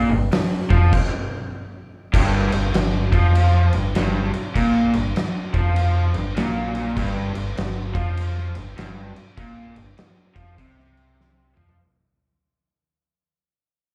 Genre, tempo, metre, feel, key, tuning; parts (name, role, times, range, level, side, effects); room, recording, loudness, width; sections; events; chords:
blues rock power trio and southern rock; 99 BPM; 4/4; swing 63% on 8ths; A4 = 439 Hz
raw garage guitar; riff; 0.0-11.8 s; G2 to F3; -26 LUFS; equal; overdrive, slapback echo
fingered electric bass; bass; 0.0-11.8 s; G1 to F2; -23 LUFS; equal
oversized low-tuned drum kit; drums; 0.3-11.8 s; crash cymbal, hi-hat, kick drum, snare drum, toms; -26 LUFS; equal
little or no reverb; live gig heard through the venue's PA, club reverb; -21 LUFS; mono
0.0-2.1 A section; 2.1-11.8 A section
stop 0.9-2.1; fade-out 2.1-11.8; drum fill 11.2-11.8
0.0 G7(no3); 2.1 Gm7